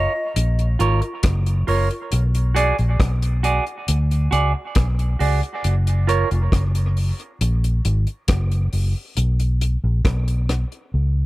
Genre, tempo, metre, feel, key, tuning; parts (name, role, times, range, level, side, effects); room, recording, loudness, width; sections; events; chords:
dub reggae; 68 BPM; 4/4; straight; F# major; A4 = 440 Hz
clean electric guitar; accompaniment; 0.0-6.3 s; E#4 to D5; -24 LUFS; right 4 dB; phaser, dub echo
vintage muted fingered electric bass; bass; 0.0-11.3 s; E#1 to D2; -18 LUFS; equal
deep reggae drum kit; drums; 0.4-10.9 s; hi-hat, kick drum, rim click; -23 LUFS; equal
small room ambience; echo-heavy mix; -18 LUFS; side -18 dB against mid
0.0-11.3 A section
drums muted 10.9-11.3
0.0 F#maj7; 2.1 Bm6; 5.6 F#; 9.2 N.C.